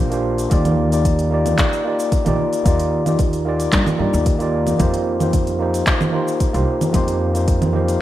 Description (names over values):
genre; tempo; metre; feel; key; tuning
sunset chillout; 112 BPM; 4/4; straight; unclear; A4 = 440 Hz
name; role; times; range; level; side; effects
overdriven tine electric piano; accompaniment; 0.0-8.0 s; Bb3 to D5; -20 LUFS; equal; auto-pan, tape echo
upright bass; bass; 0.0-8.0 s; Bb1 to G2; -21 LUFS; equal; none
smooth R&B drum kit; drums; 0.1-8.0 s; congas, handclaps, hi-hat, shaker; -23 LUFS; right 2 dB; none
electronic kick drum; drums; 0.5-7.6 s; none; -19 LUFS; equal; none
room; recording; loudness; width
moderate lush hall reverb, RT60 1.9 s, digital ambience; rough home demo mix; -16 LUFS; side -13 dB against mid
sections
0.0-8.0 A section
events
none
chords
0.0 Bb6; 0.5 Ebmaj9; 4.8 F9sus4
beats
| 0.51 1.05 1.58 2.12 | 2.66 3.19 3.73 4.26 | 4.80 5.33 5.87 6.41 | 6.94 7.48 8.01